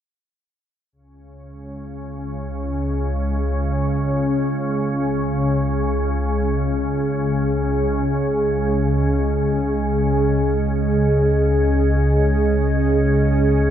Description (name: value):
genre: dark ambient drone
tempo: free time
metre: none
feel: none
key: unclear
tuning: A4 = 440 Hz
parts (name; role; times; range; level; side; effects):
- sweeping resonant pad; sustained chords; 0.9-13.7 s; C#4 to D#5; -29 LUFS; equal; chorus
- organ-like drone; drone; 1.6-13.7 s; C#2 to C#3; -18 LUFS; equal; ensemble chorus, built-in reverb
room: wet huge ambient reverb, RT60 8.2 s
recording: cassette tape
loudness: -17 LUFS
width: side -10 dB against mid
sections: 0.9-13.7 A section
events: fade-in on analog synth pad 0.9-13.7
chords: 0.9 C#5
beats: free time